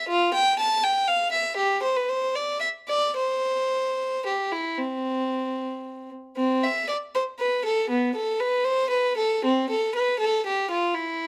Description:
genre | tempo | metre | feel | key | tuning
classical, baroque-style suite movement for unaccompanied violin | 77 BPM (dotted quarters) | 12/8 | uneven beats, rubato | C major | A4 = 440 Hz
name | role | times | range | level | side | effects
rich violin | solo | 0.0-11.3 s | B3 to A5 | -25 LUFS | equal | none
room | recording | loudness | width
light reverb | close, detailed microphones | -25 LUFS | mono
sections
0.0-6.4 A section; 6.4-11.3 B section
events
none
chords
none

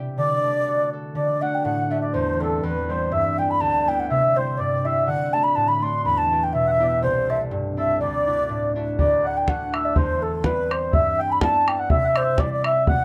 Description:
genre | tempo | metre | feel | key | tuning
celtic folk, Celtic polka | 123 BPM | 2/4 | swing 54% on 8ths | D mixolydian | A4 = 440 Hz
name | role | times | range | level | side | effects
concert harp | accompaniment | 0.0-13.0 s | C2 to A4 | -28 LUFS | equal | none
mellow baroque flute | melody | 0.2-13.0 s | A4 to C6 | -24 LUFS | equal | none
mellow accordion | second line | 0.2-13.0 s | A4 to C6 | -29 LUFS | equal | tape echo
bodhran | percussion | 9.0-13.0 s | none | -24 LUFS | equal | none
room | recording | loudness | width
moderate studio reverb, RT60 0.5 s | rough home demo mix | -22 LUFS | mono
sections
0.0-1.2 A section; 1.2-9.0 B section; 9.0-13.0 B section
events
none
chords
0.2 D; 2.1 C/E; 3.1 G6; 4.1 C; 5.1 D; 6.1 Em; 7.0 C6; 8.0 Dadd9; 9.0 D; 10.0 C/E; 10.9 G6; 11.9 C

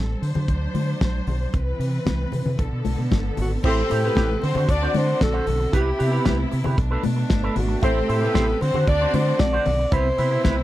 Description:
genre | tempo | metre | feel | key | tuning
disco | 115 BPM | 4/4 | straight | unclear | A4 = 441 Hz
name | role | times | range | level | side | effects
clear studio string section | sustained chords | 0.0-10.6 s | B2 to C5 | -29 LUFS | right 1 dB | none
deep dub fingered electric bass | bass | 0.0-10.6 s | G1 to D3 | -24 LUFS | equal | none
damped 70s drum kit | drums | 0.2-10.6 s | crash cymbal, hi-hat, kick drum, snare drum | -23 LUFS | equal | none
congas | percussion | 0.4-10.6 s | none | -30 LUFS | left 7 dB | none
breathy alto saxophone | melody | 3.4-10.6 s | F#4 to D5 | -24 LUFS | equal | none
clear studio string section | second line | 3.6-9.4 s | B3 to D5 | -27 LUFS | left 3 dB | none
electric guitar with an envelope filter | accompaniment | 3.6-10.6 s | C4 to C5 | -28 LUFS | right 4 dB | analog chorus
room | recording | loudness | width
little or no reverb | dry, close 1970s-style studio recording | -19 LUFS | side -15 dB against mid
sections
0.0-3.6 A section; 3.6-10.6 B section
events
none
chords
0.2 D7; 1.5 Cmaj7; 2.6 Bm7; 3.6 Am7; 4.4 D7; 5.7 Cmaj7; 6.8 Bm7; 7.8 Am7; 8.6 D7; 9.9 Cmaj7

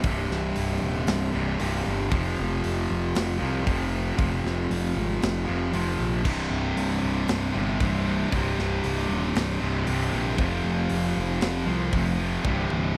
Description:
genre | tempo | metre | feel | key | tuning
heavy metal | 116 BPM | 4/4 | straight | unclear | A4 = 440 Hz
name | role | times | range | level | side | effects
heavy high-gain guitar | riff | 0.0-13.0 s | C2 to F3 | -30 LUFS | equal | distortion
fuzz picked electric bass | bass | 0.0-12.9 s | C1 to C2 | -30 LUFS | equal | overdrive
tight metal drum kit | drums | 0.0-12.8 s | crash cymbal, hi-hat, kick drum, snare drum, toms | -34 LUFS | equal | none
scooped high-gain guitar | riff | 6.2-13.0 s | C2 to F3 | -32 LUFS | equal | distortion
room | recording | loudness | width
light reverb | vinyl crackle | -26 LUFS | mono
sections
0.0-13.0 A section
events
half time 0.0-13.0; drum fill 12.4-13.0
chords
0.0 C5; 2.1 F5; 6.3 C5; 10.4 F5; 12.4 C5

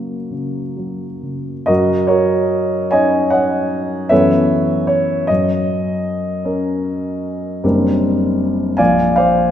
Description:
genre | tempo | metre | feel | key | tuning
classical, impressionist solo piano | 42-53 BPM (dotted quarters) | 9/8 | rubato | unclear | A4 = 441 Hz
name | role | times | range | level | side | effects
warm concert grand piano | solo | 0.0-9.5 s | Gb1 to Ab5 | -14 LUFS | equal | none
room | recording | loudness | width
wet concert hall reverb, RT60 2.0 s | recorded in a church or concert hall | -14 LUFS | side -10 dB against mid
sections
0.0-1.7 A section; 1.7-9.5 B section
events
none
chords
0.0 Gb; 1.7 Gb6; 4.1 Aadd9/Gb; 5.3 Bbm/Gb; 7.6 Cm9/Gb; 8.8 Bb9

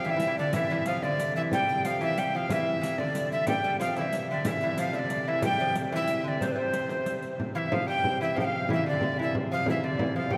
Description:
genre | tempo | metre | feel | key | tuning
medieval dance | 123 BPM (dotted quarters) | 6/8 | straight | C major | A4 = 439 Hz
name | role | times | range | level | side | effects
breathy tenor recorder | melody | 0.0-10.4 s | B4 to G5 | -31 LUFS | equal | slapback echo
lute | second line | 0.0-10.4 s | C3 to G3 | -35 LUFS | equal | none
tenor recorder | second line | 0.0-10.4 s | C5 to G5 | -37 LUFS | equal | none
rich viola da gamba | drone | 0.0-10.4 s | C3 | -39 LUFS | equal | none
riq | percussion | 0.0-7.3 s | none | -42 LUFS | equal | none
frame drum | percussion | 0.1-10.4 s | none | -37 LUFS | equal | none
room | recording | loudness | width
wet cathedral reverb, RT60 5.2 s | none | -28 LUFS | mono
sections
0.0-7.4 A section; 7.4-10.4 B section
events
none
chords
none

